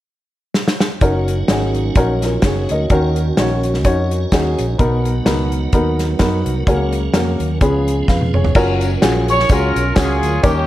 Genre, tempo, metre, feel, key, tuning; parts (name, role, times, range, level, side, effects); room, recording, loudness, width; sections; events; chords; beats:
uptempo gospel; 127 BPM; 4/4; swing 56% on 8ths; F# major; A4 = 440 Hz
natural country drum kit; drums; 0.5-10.6 s; crash cymbal, hi-hat, kick drum, snare drum, toms; -18 LUFS; equal
warm baby grand piano; accompaniment; 1.0-10.7 s; B2 to E#5; -19 LUFS; left 1 dB
dark French horn section; sustained chords; 1.0-8.5 s; F#3 to A#4; -28 LUFS; right 1 dB
tonewheel organ; sustained chords; 1.0-10.7 s; E#3 to G#5; -27 LUFS; right 5 dB; fast rotary speaker, chorus vibrato
fingered electric bass; bass; 1.0-10.7 s; E#1 to F#2; -19 LUFS; equal
tambourine and handclaps; percussion; 8.6-10.6 s; -33 LUFS; left 2 dB
clear horn section; melody; 9.3-10.7 s; A#3 to C#5; -17 LUFS; equal
light reverb, small room reverb; -14 LUFS; side -14 dB against mid
0.0-1.0 A section; 1.0-8.6 B section; 8.6-10.7 C section
drum fill 0.5-1.0, 8.1-8.6
0.0 N.C.; 1.0 F#6; 2.9 D#m7; 4.8 Bmaj7; 6.7 F#/C#; 7.6 C#7; 8.6 F#maj7
0.07 0.54 | 1.01 1.49 1.96 2.43 | 2.90 3.37 3.84 4.31 | 4.78 5.26 5.73 6.20 | 6.67 7.14 7.61 8.08 | 8.55 9.03 9.49 9.96 | 10.44